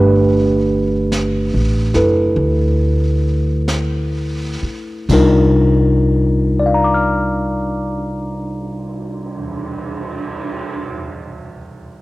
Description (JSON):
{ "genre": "jazz ballad", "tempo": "41-51 BPM", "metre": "4/4", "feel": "swing 68% on 8ths", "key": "C minor", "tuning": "A4 = 440 Hz", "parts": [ { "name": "tine electric piano", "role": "accompaniment", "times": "0.0-12.0 s", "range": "C3 to F6", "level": "-16 LUFS", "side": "equal", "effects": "overdrive, auto-pan" }, { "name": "upright bass", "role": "bass", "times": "0.0-9.3 s", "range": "F#1 to D2", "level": "-18 LUFS", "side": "equal", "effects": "tube saturation" }, { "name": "jazz brush drum kit", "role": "drums", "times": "1.1-10.7 s", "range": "brushed snare drum, crash cymbal, cymbal swell, hi-hat, kick drum, snare drum", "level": "-28 LUFS", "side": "right 2 dB", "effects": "none" } ], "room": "studio reverb", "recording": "home recording on cassette", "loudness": "-14 LUFS", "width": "side -19 dB against mid", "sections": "0.0-5.1 A section; 5.1-11.0 B section", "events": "slowing down 0.0-5.1", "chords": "0.0 G69; 5.1 Cm11", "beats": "1.12 2.36 3.68 | 5.09 6.56 8.02 9.49" }